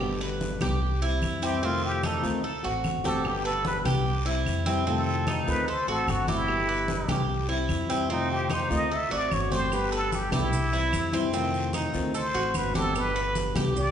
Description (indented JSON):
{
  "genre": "latin, Cuban son and guajira",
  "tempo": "148 BPM",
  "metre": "4/4",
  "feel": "straight",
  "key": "G major",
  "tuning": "A4 = 439 Hz",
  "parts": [
    { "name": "nylon-string guitar", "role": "accompaniment", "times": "0.0-13.8 s", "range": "B2 to G4", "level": "-31 LUFS", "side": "left 3 dB", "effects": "none" },
    { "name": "Cuban tres", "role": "arpeggios", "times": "0.0-13.9 s", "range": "C4 to B4", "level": "-31 LUFS", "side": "right 3 dB", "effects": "none" },
    { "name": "upright bass", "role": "bass", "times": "0.0-13.9 s", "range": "G1 to F2", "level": "-31 LUFS", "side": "equal", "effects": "none" },
    { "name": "claves", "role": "percussion", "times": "0.0-13.8 s", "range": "none", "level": "-42 LUFS", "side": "right 3 dB", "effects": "none" },
    { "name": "congas", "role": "percussion", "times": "0.0-13.9 s", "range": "none", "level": "-34 LUFS", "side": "left 2 dB", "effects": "none" },
    { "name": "guiro", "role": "percussion", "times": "0.0-13.9 s", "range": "none", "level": "-42 LUFS", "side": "left 4 dB", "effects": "none" },
    { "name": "trumpet with plunger mute", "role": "melody", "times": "1.4-13.9 s", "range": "Eb4 to E5", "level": "-29 LUFS", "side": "equal", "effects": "none" },
    { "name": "maracas", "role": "percussion", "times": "9.7-13.9 s", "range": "none", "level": "-44 LUFS", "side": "right 6 dB", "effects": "none" }
  ],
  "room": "wet recital hall reverb, RT60 1.3 s",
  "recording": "recorded in a church or concert hall, nothing above 10.4 kHz",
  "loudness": "-24 LUFS",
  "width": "side -9 dB against mid",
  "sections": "0.0-13.9 A section",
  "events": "muted trumpet solo 0.0-13.9",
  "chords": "0.0 G; 0.8 C; 1.6 F7; 2.4 D7; 3.2 G; 4.1 C; 4.9 F7; 5.7 D7; 6.5 G; 7.3 C; 8.1 F7; 8.9 D7; 9.7 G; 10.5 C; 11.3 F7; 12.1 D7; 13.0 G",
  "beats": "| 0.01 0.42 0.82 1.23 | 1.63 2.04 2.44 2.84 | 3.25 3.65 4.06 4.46 | 4.87 5.27 5.67 6.08 | 6.48 6.89 7.29 7.70 | 8.10 8.51 8.91 9.31 | 9.72 10.12 10.53 10.93 | 11.33 11.74 12.14 12.55 | 12.95 13.36 13.76"
}